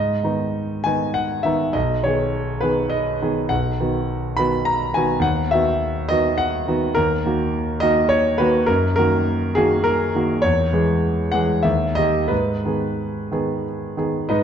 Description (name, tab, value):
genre	classical, romantic character piece for solo piano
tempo	86-107 BPM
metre	3/4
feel	rubato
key	G# minor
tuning	A4 = 440 Hz
part	clear concert grand piano	solo	0.0-14.4 s	B1 to B5	-18 LUFS	equal	none
room	wet recital hall reverb, RT60 1.7 s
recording	dark, warm production, nothing above 7.8 kHz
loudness	-18 LUFS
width	side -8 dB against mid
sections	0.0-14.3 A section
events	none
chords	0.0 G#m; 1.7 G#m/B; 3.5 B; 5.2 B/D#; 7.0 D#m; 8.7 D#m/F#; 10.4 C#m/E; 11.7 D#; 12.3 G#m